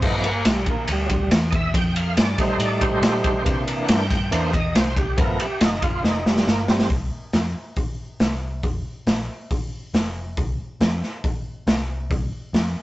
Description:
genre	blues rock power trio and southern rock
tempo	139 BPM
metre	4/4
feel	straight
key	C mixolydian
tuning	A4 = 438 Hz
part	overdriven tonewheel organ	sustained chords	0.0-6.9 s	E3 to G5	-24 LUFS	right 1 dB	slow rotary speaker, chorus vibrato
part	vintage muted picked electric bass	bass	0.0-12.7 s	F1 to C3	-26 LUFS	equal	none
part	raw garage drum kit	drums	0.0-12.6 s	crash cymbal, hi-hat, kick drum, ride cymbal, snare drum	-21 LUFS	equal	none
room	light reverb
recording	rough rehearsal-room recording, tube saturation, nothing above 8.0 kHz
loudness	-20 LUFS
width	side -17 dB against mid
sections	0.0-6.9 A section; 6.9-12.8 B section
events	tonewheel organ solo 0.0-6.9; drum fill 6.0-6.9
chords	0.0 G7; 1.7 F7; 3.5 C7; 5.2 G7; 6.9 Csus4; 8.6 Fsus4; 10.4 Csus4

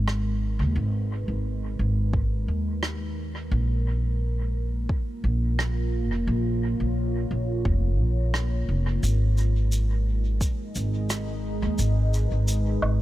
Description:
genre	ambient dub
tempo	87 BPM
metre	4/4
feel	straight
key	G# dorian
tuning	A4 = 441 Hz
part	deep dark ambient pad	sustained chords	0.0-13.0 s	G#3 to C#5	-32 LUFS	right 1 dB	chorus, built-in reverb
part	upright bass	bass	0.0-13.0 s	E#1 to D#2	-24 LUFS	equal	none
part	rim click, shaker and woodblock	drums	0.1-13.0 s	none	-33 LUFS	right 1 dB	dub echo
part	electronic kick drum	drums	2.1-10.6 s	none	-26 LUFS	equal	none
room	small room ambience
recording	none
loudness	-23 LUFS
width	side -15 dB against mid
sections	0.0-13.0 A section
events	none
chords	0.0 G#m; 3.5 A#m; 9.0 G#m

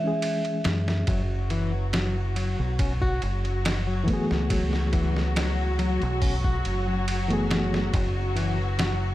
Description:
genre	trip hop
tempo	70 BPM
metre	4/4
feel	straight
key	F# minor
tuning	A4 = 440 Hz
part	vibraphone with hard mallets	melody	0.0-0.6 s	E5	-32 LUFS	right 2 dB	tape echo
part	reed electric piano	accompaniment	0.0-7.9 s	E3 to G#4	-30 LUFS	left 1 dB	fast tremolo
part	trip hop sampler-style drum kit	drums	0.2-9.0 s	hi-hat, kick drum, ride cymbal, snare drum	-29 LUFS	equal	small room ambience
part	deep dub fingered electric bass	bass	0.7-9.1 s	F#1 to F#2	-26 LUFS	equal	tube saturation
part	warm studio string section	sustained chords	1.1-9.1 s	F#3 to F#4	-32 LUFS	left 1 dB	none
part	flamenco guitar	arpeggios	1.1-9.0 s	E3 to F#4	-32 LUFS	left 3 dB	tape echo
room	small room ambience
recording	none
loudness	-23 LUFS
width	side -15 dB against mid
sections	0.0-9.1 A section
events	none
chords	0.0 C#m; 1.1 F#m11; 7.9 N.C.

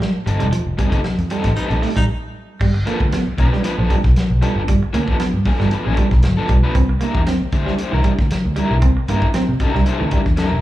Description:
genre	funk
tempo	116 BPM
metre	4/4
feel	straight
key	G mixolydian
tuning	A4 = 440 Hz
part	electric guitar at the edge of break-up	riff	0.0-10.2 s	E3 to C4	-24 LUFS	right 5 dB	slapback echo
part	warm soul drum kit	drums	0.0-10.5 s	crash cymbal, hi-hat, kick drum, snare drum	-20 LUFS	equal	none
part	crunchy overdriven guitar	accompaniment	0.3-10.6 s	F3 to C5	-23 LUFS	left 3 dB	tremolo, slapback echo
part	vintage muted picked electric bass	bass	0.3-10.6 s	E1 to C3	-18 LUFS	equal	none
part	raspy baritone saxophone	second line	1.6-2.0 s	Eb4	-30 LUFS	equal	slapback echo
room	small room ambience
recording	live gig heard through the venue's PA, club reverb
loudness	-15 LUFS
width	side -15 dB against mid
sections	0.0-2.6 A section; 2.6-10.6 B section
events	band accent 0.5-2.6; break 2.1-2.6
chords	0.0 F9; 2.6 G9; 6.8 C9

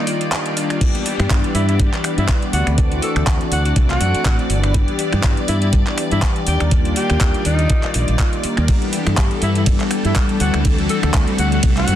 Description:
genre	nu-disco, nu disco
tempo	122 BPM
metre	4/4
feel	swing 56% on 16ths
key	G major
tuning	A4 = 440 Hz
part	clear tenor saxophone	melody	0.0-12.0 s	Eb4 to A4	-26 LUFS	left 1 dB	digital delay
part	warm analog pad	accompaniment	0.0-12.0 s	Eb3 to D5	-23 LUFS	left 1 dB	chorus
part	string machine, full ensemble	sustained chords	0.0-12.0 s	G3 to D5	-25 LUFS	left 1 dB	ensemble chorus, sidechain pumping
part	pop drum kit	drums	0.1-12.0 s	crash cymbal, finger snaps, handclaps, hi-hat, ride cymbal	-24 LUFS	right 1 dB	soft clipping on snare
part	electronic kick drum	drums	0.8-11.7 s	none	-17 LUFS	equal	none
part	fingered electric bass with an envelope filter	bass	1.2-12.0 s	G1 to G2	-19 LUFS	equal	tube saturation
room	light reverb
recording	dense, heavily limited modern master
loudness	-15 LUFS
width	side -11 dB against mid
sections	0.0-12.0 A section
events	break 0.0-0.8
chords	0.0 Ebmaj9; 0.8 G6; 2.5 D9; 4.5 G6; 6.5 Ebmaj9; 8.7 G6; 10.4 D9

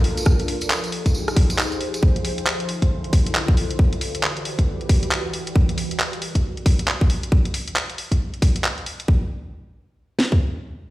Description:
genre	UK garage, two-step garage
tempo	136 BPM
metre	4/4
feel	swing 61% on 16ths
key	unclear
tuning	A4 = 440 Hz
part	ethereal airy pad	sustained chords	0.0-5.6 s	D3 to D5	-29 LUFS	equal	ensemble chorus, built-in reverb, phaser, sidechain pumping
part	garage drum kit	drums	0.0-9.1 s	handclaps, hi-hat, rim click	-24 LUFS	equal	none
part	airy breathy pad	texture	0.0-2.0 s	Bb3 to Eb5	-38 LUFS	equal	none
part	tambourine	percussion	0.2-2.0 s	none	-32 LUFS	right 2 dB	none
part	garage drum kit	drums	0.3-10.4 s	kick drum, snare drum	-17 LUFS	equal	none
room	light reverb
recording	played on a big sound system in a bare room, large studio reverb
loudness	-19 LUFS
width	side -17 dB against mid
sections	0.0-9.1 A section; 9.1-10.9 B section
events	none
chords	0.3 Fm7; 2.0 Dm7; 3.6 Em7; 5.3 Gm7; 7.3 N.C.

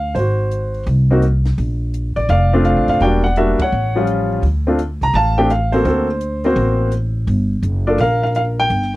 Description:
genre	jazz piano trio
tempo	169 BPM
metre	4/4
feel	swing 65% on 8ths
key	unclear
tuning	A4 = 440 Hz
part	warm upright piano	melody	0.0-8.9 s	F3 to Bb5	-16 LUFS	equal	none
part	upright bass	bass	0.0-9.0 s	E1 to D2	-17 LUFS	equal	none
part	compact cocktail drum kit	drums	0.2-9.0 s	hi-hat, kick drum, ride cymbal, snare drum	-29 LUFS	equal	none
room	little or no reverb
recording	dry, close 1970s-style studio recording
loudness	-14 LUFS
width	side -18 dB against mid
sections	0.0-9.0 A section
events	band accent 3.5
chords	0.2 Ab7; 1.6 Bbmaj7; 3.0 Em7b5; 3.7 A7b13; 4.4 Dm7; 5.9 D7b13; 7.3 Gm7

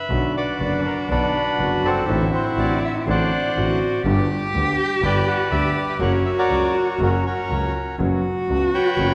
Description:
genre	tango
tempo	122 BPM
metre	4/4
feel	rubato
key	unclear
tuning	A4 = 438 Hz
part	bandoneon	melody	0.0-9.1 s	C4 to G5	-26 LUFS	equal	none
part	warm cello	second line	0.1-9.1 s	D4 to G4	-26 LUFS	equal	none
part	clear concert grand piano	accompaniment	0.1-9.1 s	F#1 to G4	-27 LUFS	equal	none
part	clear double bass	bass	0.1-9.1 s	F#1 to D2	-28 LUFS	equal	none
room	wet concert hall reverb, RT60 2.1 s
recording	recorded in a church or concert hall, nothing above 10.8 kHz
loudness	-21 LUFS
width	mono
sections	0.1-9.1 A section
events	none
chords	0.1 Bm; 2.1 D7/A; 4.1 G; 6.0 F#; 8.0 F#sus4

